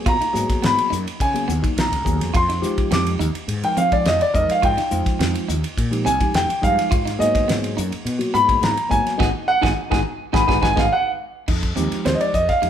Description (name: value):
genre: electric jazz fusion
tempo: 105 BPM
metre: 4/4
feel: straight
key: unclear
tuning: A4 = 441 Hz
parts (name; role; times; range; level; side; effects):
- warm grand piano; melody; 0.0-12.7 s; C5 to D6; -20 LUFS; equal; none
- tine electric piano; accompaniment; 0.0-12.7 s; F3 to Bb4; -26 LUFS; equal; phaser
- clean electric guitar; stabs; 0.1-12.7 s; Cb4 to Ab4; -27 LUFS; right 5 dB; none
- mellow fretless electric bass; bass; 0.1-12.7 s; Ab1 to F3; -25 LUFS; equal; none
- damped 70s drum kit; drums; 0.1-12.7 s; crash cymbal, hi-hat, kick drum, ride cymbal, snare drum; -23 LUFS; equal; none
room: moderate large studio reverb, RT60 1.2 s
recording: band playing live in one room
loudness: -17 LUFS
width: side -9 dB against mid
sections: 0.0-11.5 A section; 11.5-12.7 B section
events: grand piano solo 0.0-11.5; band accent 9.2-11.5; drum fill 10.9-11.5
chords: 0.0 Abm9; 2.3 Fm9; 6.9 Abm9; 11.5 Fm9